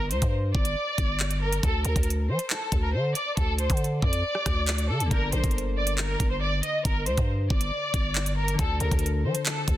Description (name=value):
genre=hip hop, drill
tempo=138 BPM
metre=4/4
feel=half-time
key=G minor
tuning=A4 = 440 Hz
part: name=rich studio violin section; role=melody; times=0.0-9.8 s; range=A4 to Eb5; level=-29 LUFS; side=equal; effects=low-pass filter, digital delay
part: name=growling 808-style bass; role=bass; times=0.0-9.8 s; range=G1 to F3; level=-27 LUFS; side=equal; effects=none
part: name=drill drum kit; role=drums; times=0.1-9.8 s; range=handclaps, hi-hat, kick drum, rim click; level=-27 LUFS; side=equal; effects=none
part: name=concert harp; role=accompaniment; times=5.1-9.8 s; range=D3 to Bb4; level=-34 LUFS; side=left 4 dB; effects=low-pass filter
room=studio reverb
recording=dense, heavily limited modern master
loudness=-23 LUFS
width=side -14 dB against mid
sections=0.0-9.8 A section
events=none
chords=0.0 G5; 1.6 D5; 5.1 Gm; 8.6 Dm7